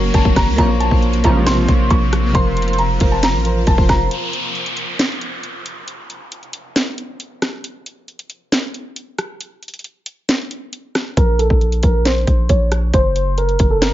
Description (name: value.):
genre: hip hop, trap.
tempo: 136 BPM.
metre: 4/4.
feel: half-time.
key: Bb harmonic minor.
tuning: A4 = 442 Hz.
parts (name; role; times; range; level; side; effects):
dark concert grand piano; melody; 0.0-4.1, 11.2-13.9 s; A4 to Db6; -20 LUFS; right 1 dB; low-pass filter, tape echo.
soft electric-piano-like synth keys; accompaniment; 0.0-4.1 s; F3 to Db5; -22 LUFS; equal; chorus, tremolo, low-pass filter.
granular cloud pad; sustained chords; 0.0-4.1 s; C3 to C5; -24 LUFS; equal; built-in reverb.
long sustained 808-style bass; bass; 0.0-4.1, 11.2-13.9 s; F1 to Db2; -18 LUFS; equal; none.
trap drum kit; drums; 0.1-13.9 s; hi-hat, kick drum, rim click, snare drum; -18 LUFS; equal; none.
sync-sweep polysynth; stabs; 0.6-1.7 s; Db2 to F3; -21 LUFS; right 2 dB; chorus.
downlifter; sound effects; 4.1-7.6 s; none; -26 LUFS; equal; none.
room: digital ambience.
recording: nothing above 7.5 kHz.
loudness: -14 LUFS.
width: side -13 dB against mid.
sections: 0.0-4.1 A section; 4.1-13.9 B section.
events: break 4.1-11.2; filter sweep 4.1-13.9.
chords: 0.0 Gb; 0.6 Bbmadd9; 2.3 Fsus4; 4.1 N.C.; 11.2 Bbmadd9; 12.9 Gb.